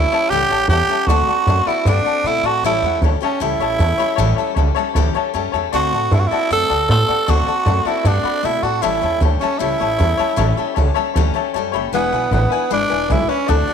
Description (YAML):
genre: rockabilly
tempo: 155 BPM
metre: 4/4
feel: straight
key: A mixolydian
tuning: A4 = 440 Hz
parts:
  - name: growling tenor saxophone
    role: melody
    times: 0.0-13.7 s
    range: B3 to A4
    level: -18 LUFS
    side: right 4 dB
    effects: none
  - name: clear upright piano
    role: accompaniment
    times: 0.0-13.7 s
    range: B4 to C6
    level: -22 LUFS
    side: left 11 dB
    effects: none
  - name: picked steel-string acoustic guitar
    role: accompaniment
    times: 0.0-13.7 s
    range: A2 to B4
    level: -24 LUFS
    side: left 12 dB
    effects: none
  - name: upright bass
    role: bass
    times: 0.0-13.7 s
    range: E1 to B2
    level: -18 LUFS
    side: right 1 dB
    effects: tube saturation
room: light reverb, small room ambience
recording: 1960s-style stereo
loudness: -15 LUFS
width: side -7 dB against mid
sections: 0.0-13.7 A section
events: upright piano fill 5.1-5.7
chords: 0.0 A7; 1.1 D7; 2.6 A7; 5.7 D7; 8.8 A7; 11.9 E7